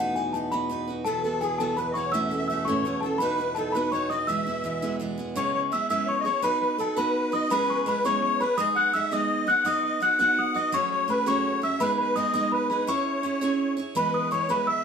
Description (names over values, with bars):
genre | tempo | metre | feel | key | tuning
celtic folk, Celtic jig | 112 BPM (dotted quarters) | 6/8 | straight | E major, C# minor from 5.4 s | A4 = 438 Hz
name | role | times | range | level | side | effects
celesta | melody | 0.0-14.8 s | F#5 to F#6 | -25 LUFS | left 2 dB | none
picked steel-string acoustic guitar | accompaniment | 0.0-14.8 s | A2 to C#5 | -29 LUFS | right 3 dB | none
pedal harmonium | drone | 0.0-5.4 s | E2 to B2 | -34 LUFS | right 1 dB | none
musette accordion | second line | 1.1-14.8 s | G#4 to F#5 | -29 LUFS | equal | none
room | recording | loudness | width
wet stone room reverb, RT60 0.9 s | band playing live in one room | -23 LUFS | side -6 dB against mid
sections
0.0-5.4 A section; 5.4-14.0 B section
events
none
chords
0.0 B; 1.1 Bsus4; 2.1 A; 3.2 B; 4.3 E; 5.4 C#m7; 6.4 B; 7.5 C#m7; 8.6 G#m; 9.7 B; 10.7 F#madd9; 11.8 G#m; 12.9 C#m; 14.0 E